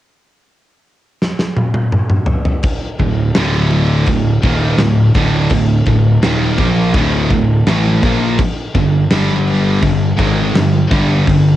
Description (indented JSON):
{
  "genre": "heavy metal",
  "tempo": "84 BPM",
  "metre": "4/4",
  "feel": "straight",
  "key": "unclear",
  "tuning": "A4 = 440 Hz",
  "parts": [
    { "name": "big rock drum kit", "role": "drums", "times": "1.2-11.4 s", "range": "crash cymbal, kick drum, snare drum, toms", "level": "-17 LUFS", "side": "equal", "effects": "cassette tape" },
    { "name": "high-gain distorted guitar", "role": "riff", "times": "3.0-11.6 s", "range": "D2 to Bb3", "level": "-17 LUFS", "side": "right 5 dB", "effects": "distortion, cassette tape" },
    { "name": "overdriven semi-hollow guitar", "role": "riff", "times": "3.0-11.6 s", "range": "D2 to Bb3", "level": "-18 LUFS", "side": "left 1 dB", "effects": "cassette tape" },
    { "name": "scooped high-gain guitar", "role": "riff", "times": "3.0-11.5 s", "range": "D2 to Bb3", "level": "-19 LUFS", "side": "left 5 dB", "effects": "distortion, cassette tape" },
    { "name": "fuzz picked electric bass", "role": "bass", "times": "3.0-11.6 s", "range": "D1 to Bb1", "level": "-18 LUFS", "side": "equal", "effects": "overdrive" }
  ],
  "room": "light reverb, studio reverb",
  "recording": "home recording on cassette",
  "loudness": "-11 LUFS",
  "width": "side -13 dB against mid",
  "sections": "0.0-2.6 A section; 2.6-11.6 B section",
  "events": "drum fill 1.2-2.6",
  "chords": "0.0 N.C.; 2.6 D5; 8.7 G5",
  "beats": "0.48 1.20 1.92 | 2.63 3.35 4.07 4.79 | 5.51 6.23 6.95 7.67 | 8.38 9.10 9.82 10.54 | 11.26"
}